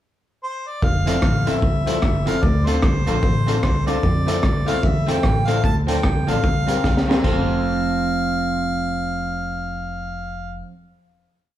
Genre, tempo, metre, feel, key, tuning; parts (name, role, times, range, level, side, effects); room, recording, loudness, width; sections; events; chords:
ska; 150 BPM; 4/4; swing 61% on 8ths; F major; A4 = 441 Hz
mellow harmonica; melody; 0.4-10.6 s; C5 to A5; -26 LUFS; left 1 dB
upright bass; bass; 0.8-10.6 s; F1 to F2; -24 LUFS; equal
crunchy breakbeat drum kit; drums; 0.8-7.4 s; hi-hat, kick drum, rim click, snare drum, splash cymbal; -20 LUFS; equal
electric guitar at the edge of break-up; accompaniment; 1.1-10.8 s; F3 to Bb4; -26 LUFS; right 5 dB; spring reverb
warm upright piano; stabs; 1.1-10.6 s; C4 to Bb4; -27 LUFS; left 6 dB
wet large studio reverb, RT60 1.3 s; band playing live in one room; -18 LUFS; side -12 dB against mid
0.0-0.8 pickup bar; 0.8-7.2 A section; 7.2-10.4 final chord
drum fill 6.8-7.2
0.0 N.C.; 0.8 Fmaj7; 2.4 Dm7; 4.0 Fmaj7; 5.6 Dm7; 6.4 C7sus4; 7.2 F